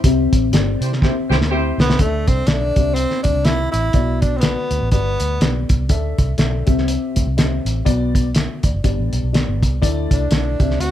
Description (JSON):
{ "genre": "uptempo 1960s-style soul", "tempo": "122 BPM", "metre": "4/4", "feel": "swing 59% on 8ths", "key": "unclear", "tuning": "A4 = 440 Hz", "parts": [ { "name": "dark upright piano", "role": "accompaniment", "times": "0.0-10.9 s", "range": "G2 to E5", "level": "-23 LUFS", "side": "left 5 dB", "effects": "none" }, { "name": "vintage muted fingered electric bass", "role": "bass", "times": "0.0-10.9 s", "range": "F#1 to C3", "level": "-20 LUFS", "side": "equal", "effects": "none" }, { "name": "cloth-damped thuddy drum kit", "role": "drums", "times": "0.0-10.9 s", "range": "hi-hat, kick drum, snare drum", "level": "-18 LUFS", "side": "equal", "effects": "none" }, { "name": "mellow horn section", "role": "second line", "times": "0.8-2.0 s", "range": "E4 to C5", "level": "-25 LUFS", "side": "right 2 dB", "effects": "none" }, { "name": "breathy tenor saxophone", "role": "melody", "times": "1.8-5.7, 10.1-10.9 s", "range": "A3 to F#4", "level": "-21 LUFS", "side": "equal", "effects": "none" } ], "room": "light reverb", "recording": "none", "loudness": "-15 LUFS", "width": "side -11 dB against mid", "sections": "0.0-2.0 A section; 2.0-10.9 B section", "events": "drum fill 1.0-2.0", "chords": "0.0 C; 2.0 Dsus2; 2.7 C; 3.9 Bm; 4.9 G; 5.9 Dsus2; 6.6 C; 7.9 Bm; 8.8 G; 9.8 Dsus2" }